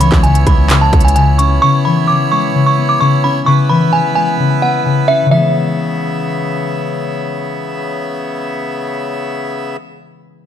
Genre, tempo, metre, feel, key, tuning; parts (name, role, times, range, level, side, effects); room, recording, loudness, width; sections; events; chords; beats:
hip hop, trap; 130 BPM; 4/4; half-time; C# minor; A4 = 440 Hz
delicate synth tine bell; melody; 0.0-6.7 s; E5 to D6; -15 LUFS; right 1 dB; chorus, low-pass filter, tape echo
concert harp; accompaniment; 0.0-9.9 s; C#3 to C#4; -15 LUFS; left 3 dB; low-pass filter
accordion; sustained chords; 0.0-9.8 s; C#3 to E5; -19 LUFS; right 1 dB
hard-hitting 808-style bass; bass; 0.0-1.6 s; C#2; -13 LUFS; right 1 dB
trap drum kit; drums; 0.0-1.5 s; handclaps, hi-hat, kick drum; -13 LUFS; equal
light reverb, digital ambience; -11 LUFS; side -9 dB against mid
0.0-5.3 A section; 5.3-9.0 B section
0.0 C#m7
0.24 0.70 1.16 | 1.62 2.08 2.54 3.01 | 3.47 3.93 4.39 4.85 | 5.31 5.78 6.24 6.70 | 7.16 7.62 8.08 8.54